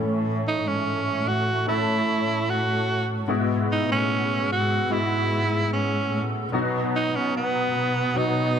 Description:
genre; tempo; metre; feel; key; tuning
pop; 74 BPM; 4/4; straight; E major; A4 = 441 Hz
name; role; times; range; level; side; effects
clear concert grand piano; accompaniment; 0.0-8.6 s; A2 to A4; -28 LUFS; left 4 dB; ensemble chorus
mellow large flute ensemble; sustained chords; 0.0-8.6 s; G#4 to E6; -32 LUFS; right 1 dB; none
dark chamber cello section; bass; 0.0-8.6 s; G#2 to B2; -27 LUFS; equal; none
raspy alto saxophone; melody; 0.5-8.6 s; B3 to F#4; -25 LUFS; right 3 dB; none
room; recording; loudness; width
light reverb, small room ambience; bright 1980s-style digital production; -21 LUFS; side -8 dB against mid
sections
0.0-8.6 A section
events
none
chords
0.0 A; 3.3 Eadd9/G#; 6.5 B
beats
| 0.05 0.86 1.67 2.48 | 3.29 4.10 4.91 5.72 | 6.53 7.34 8.15

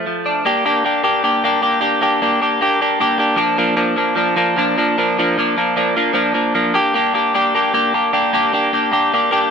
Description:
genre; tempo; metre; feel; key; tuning
rock; 152 BPM; 4/4; straight; G minor; A4 = 438 Hz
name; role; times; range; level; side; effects
overdriven electric guitar; solo; 0.0-9.5 s; F3 to G4; -14 LUFS; equal; none
room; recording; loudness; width
light reverb; dry, close 1970s-style studio recording; -14 LUFS; side -6 dB against mid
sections
0.4-9.5 A section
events
none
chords
0.4 Gm; 3.4 Bb; 6.7 Gm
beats
0.05 | 0.44 0.84 1.23 1.62 | 2.02 2.41 2.81 3.20 | 3.60 3.99 4.38 4.78 | 5.17 5.57 5.96 6.35 | 6.75 7.14 7.54 7.93 | 8.32 8.72 9.11 9.50

